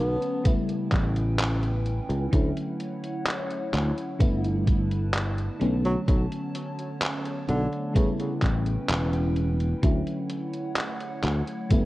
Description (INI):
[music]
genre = vaporwave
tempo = 64 BPM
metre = 4/4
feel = straight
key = unclear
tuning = A4 = 439 Hz
[part]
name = breathy tenor saxophone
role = melody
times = 0.0-8.3 s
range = C#3 to B3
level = -32 LUFS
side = equal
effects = tape echo
[part]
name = FM electric piano with soft pad layer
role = accompaniment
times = 0.0-11.9 s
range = C#3 to E4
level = -30 LUFS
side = equal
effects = phaser, analog chorus, analog delay
[part]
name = warbly tape-like pad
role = sustained chords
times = 0.0-11.9 s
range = D3 to A5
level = -36 LUFS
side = equal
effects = chorus, built-in reverb, phaser
[part]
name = sustaining fretless electric bass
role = bass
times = 0.0-11.9 s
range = E1 to D2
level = -26 LUFS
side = equal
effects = tube saturation, lush chorus
[part]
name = detuned 8-bit digital drum machine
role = drums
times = 0.2-11.9 s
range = handclaps, hi-hat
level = -31 LUFS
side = equal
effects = none
[part]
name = electronic kick drum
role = drums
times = 0.5-11.9 s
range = none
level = -23 LUFS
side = equal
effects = none
[sound]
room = light reverb, digital ambience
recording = worn, warbling old tape, cassette tape, warbly pitch drift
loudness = -24 LUFS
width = side -18 dB against mid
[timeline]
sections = 0.0-11.9 A section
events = none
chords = 0.5 A9; 2.3 Dmaj9; 4.2 G69; 5.6 Bm9; 8.0 A9; 9.8 Dmaj9